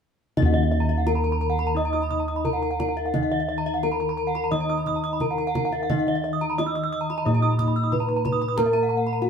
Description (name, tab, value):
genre	Balinese gamelan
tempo	87 BPM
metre	4/4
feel	straight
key	Eb pelog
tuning	A4 = 440 Hz
part	gamelan-type bronze metallophone	melody	0.4-9.3 s	Eb4 to Eb5	-28 LUFS	left 1 dB	none
part	gamelan-type bronze metallophone	accompaniment	0.4-9.3 s	Eb3 to Eb4	-32 LUFS	left 6 dB	none
part	gamelan-type bronze metallophone	arpeggios	0.4-9.3 s	Eb5 to Fb6+20c	-30 LUFS	left 2 dB	none
part	gamelan-type bossed gongs	bass	0.4-9.3 s	Eb2 to Bb4-30c	-25 LUFS	equal	none
part	kendang	percussion	0.4-9.3 s	none	-31 LUFS	right 3 dB	none
part	gamelan-type bronze metallophone	arpeggios	0.5-9.2 s	Eb5 to Fb6+20c	-29 LUFS	right 4 dB	none
room	wet studio reverb, RT60 0.7 s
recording	band playing live in one room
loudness	-21 LUFS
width	side -7 dB against mid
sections	0.4-9.3 A section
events	none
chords	none